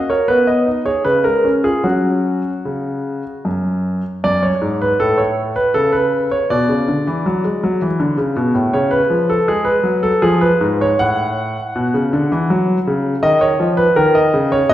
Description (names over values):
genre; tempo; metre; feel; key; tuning
classical-period piano sonatina; 73-83 BPM; 3/4; rubato; F# major, F# minor from 4.2 s; A4 = 439 Hz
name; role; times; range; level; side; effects
bright grand piano; solo; 0.0-14.7 s; F#2 to F#5; -14 LUFS; equal; none
room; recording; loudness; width
wet recital hall reverb, RT60 1.6 s; heard from further back in the room; -14 LUFS; side -13 dB against mid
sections
0.0-4.2 A section; 4.2-14.7 B section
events
none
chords
0.3 G#m/B; 1.0 C#; 1.8 F#5; 4.2 F#m; 6.5 G#m7b5/B (rootless); 8.7 C#; 11.0 F#m/A; 13.2 C#13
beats
0.28 1.04 | 1.84 2.65 3.45 | 4.24 5.00 5.74 | 6.49 7.25 7.99 | 8.73 9.47 10.22 | 11.01 11.76 12.51 | 13.24 13.97 14.71